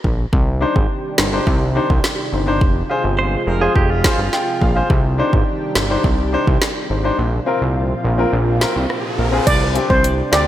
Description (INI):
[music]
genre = dancehall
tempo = 105 BPM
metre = 4/4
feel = straight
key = C minor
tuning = A4 = 440 Hz
[part]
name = fat analog bass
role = bass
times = 0.0-10.5 s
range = F1 to D2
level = -19 LUFS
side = equal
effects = none
[part]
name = afro-pop drum kit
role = drums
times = 0.0-10.5 s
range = crash cymbal, hi-hat, kick drum, rim click, snare drum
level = -18 LUFS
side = equal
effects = gated reverb
[part]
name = lush unison pad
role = sustained chords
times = 0.3-10.5 s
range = Bb2 to Ab4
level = -24 LUFS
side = right 1 dB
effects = chorus, sidechain pumping
[part]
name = clear baby grand piano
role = accompaniment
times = 0.6-10.4 s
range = C4 to G5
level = -21 LUFS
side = left 2 dB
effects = none
[part]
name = direct-recorded clean electric guitar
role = arpeggios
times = 3.2-4.7 s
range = F4 to C5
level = -22 LUFS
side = right 4 dB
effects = spring reverb
[part]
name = riser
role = sound effects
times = 8.3-9.5 s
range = none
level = -27 LUFS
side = right 1 dB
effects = none
[part]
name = steel pan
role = melody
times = 9.5-10.5 s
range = C5 to D5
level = -17 LUFS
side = right 2 dB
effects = none
[sound]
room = moderate plate reverb, RT60 2.6 s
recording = bright 1980s-style digital production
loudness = -15 LUFS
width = side -12 dB against mid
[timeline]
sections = 0.0-9.5 A section; 9.5-10.5 B section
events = grand piano fill 4.0-4.9; kick muted 7.2-9.5; riser 8.3-9.5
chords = 0.3 Cmadd9; 2.6 Fm; 4.9 Cmadd9; 7.2 Bbsus2; 9.5 Csus2